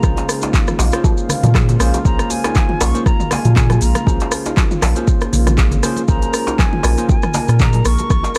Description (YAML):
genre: afro house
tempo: 119 BPM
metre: 4/4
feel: swing 55% on 16ths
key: Bb minor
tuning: A4 = 440 Hz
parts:
  - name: hollow concert flute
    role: melody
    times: 0.0-8.4 s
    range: Ab5 to Db6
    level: -28 LUFS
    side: equal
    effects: analog delay
  - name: warm analog pad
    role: sustained chords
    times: 0.0-8.4 s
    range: Db3 to Bb4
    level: -30 LUFS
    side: equal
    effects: chorus, sidechain pumping
  - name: kalimba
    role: arpeggios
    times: 0.0-8.0 s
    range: Bb3 to Ab4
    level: -28 LUFS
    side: equal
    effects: sidechain pumping, analog delay
  - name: bell-like tine electric piano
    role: stabs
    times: 0.0-7.1 s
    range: Bb3 to C5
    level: -28 LUFS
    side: equal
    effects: vintage 12-bit sampler grit, sidechain pumping, analog delay
  - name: warm sub bass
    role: bass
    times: 0.0-8.2 s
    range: Ab1 to Bb2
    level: -18 LUFS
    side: equal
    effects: sidechain pumping
  - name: deep house drum kit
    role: drums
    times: 0.0-8.4 s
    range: handclaps, hi-hat, rim click, toms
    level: -25 LUFS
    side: equal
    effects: none
  - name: electronic kick drum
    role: drums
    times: 0.0-8.2 s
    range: none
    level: -18 LUFS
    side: equal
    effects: none
  - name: maracas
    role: percussion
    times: 0.0-8.4 s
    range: none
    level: -30 LUFS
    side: equal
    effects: none
  - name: congas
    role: percussion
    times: 0.2-8.3 s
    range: none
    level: -28 LUFS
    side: equal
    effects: none
  - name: djembe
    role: percussion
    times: 0.2-8.3 s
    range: none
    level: -28 LUFS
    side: equal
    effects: none
room: studio ambience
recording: dry, gritty hardware recording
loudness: -15 LUFS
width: mono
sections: 0.0-8.4 A section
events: none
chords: 0.0 Bbm7